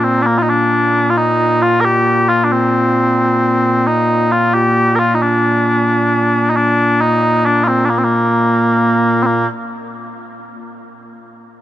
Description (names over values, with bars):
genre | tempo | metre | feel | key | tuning
scottish traditional, Scottish pipe music | 89 BPM (dotted quarters) | 6/8 | straight | Bb major | A4 = 440 Hz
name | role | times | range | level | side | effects
mellow small bagpipes | solo | 0.0-9.5 s | Bb2 to Bb4 | -12 LUFS | equal | none
room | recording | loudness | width
moderate huge ambient reverb, RT60 8.0 s | none | -11 LUFS | side -12 dB against mid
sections
0.0-9.3 A section; 9.3-10.6 B section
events
none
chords
none